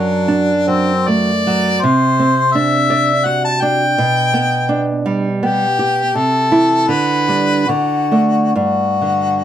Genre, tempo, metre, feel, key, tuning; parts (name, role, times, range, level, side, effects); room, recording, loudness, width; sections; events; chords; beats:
romantic duo for harmonica and classical guitar; 64-86 BPM; 3/4; rubato; G major; A4 = 440 Hz
warm harmonica; melody; 0.0-9.4 s; C4 to A5; -16 LUFS; left 3 dB
nylon-string guitar; accompaniment; 0.0-9.4 s; F#2 to D5; -16 LUFS; right 3 dB
light reverb; -13 LUFS; side -10 dB against mid
0.0-9.4 A section
0.0 D/F#; 1.8 D7/C; 4.0 G/B; 6.1 Am/C; 6.9 G/D; 7.7 D; 8.5 G5
0.27 1.07 | 1.82 2.54 3.25 | 3.98 4.68 5.42 | 6.15 6.88 7.68 | 8.55